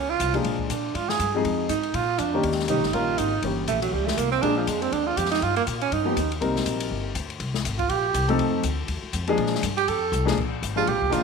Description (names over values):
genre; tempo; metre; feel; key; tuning
jazz, small-group swing and bop; 242 BPM; 4/4; swing 58% on 8ths; Bb mixolydian; A4 = 440 Hz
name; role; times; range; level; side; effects
breathy tenor saxophone; second line; 0.0-11.2 s; F3 to A4; -25 LUFS; right 7 dB; none
upright bass; bass; 0.0-11.2 s; F1 to Bb2; -29 LUFS; left 1 dB; none
open jazz drum kit; drums; 0.2-11.2 s; crash cymbal, hi-hat, kick drum, ride cymbal, snare drum; -32 LUFS; left 7 dB; none
warm baby grand piano; accompaniment; 0.3-11.2 s; Eb3 to Bb4; -26 LUFS; left 3 dB; none
room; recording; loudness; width
moderate echo chamber reverb, RT60 1.6 s; 1960s-style stereo with parts hard left and right; -22 LUFS; side -5 dB against mid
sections
0.0-10.4 A section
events
tenor saxophone solo 0.0-11.2; drum fill 10.1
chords
0.4 Bb7; 1.4 Fm7; 1.9 Bb; 2.4 Eb7; 3.4 Edim7; 4.4 Bb7; 5.4 Gm(b13); 6.4 Cm7; 8.4 F7; 9.4 Bb7; 9.9 F; 10.4 Bb7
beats
0.20 | 0.45 0.69 0.94 1.19 | 1.44 1.69 1.94 2.19 | 2.43 2.68 2.93 3.18 | 3.43 3.68 3.92 4.17 | 4.42 4.67 4.92 5.17 | 5.41 5.66 5.91 6.16 | 6.41 6.65 6.90 7.15 | 7.40 7.65 7.89 8.14 | 8.39 8.64 8.89 9.13 | 9.38 9.63 9.88 10.13 | 10.38 10.62 10.87 11.12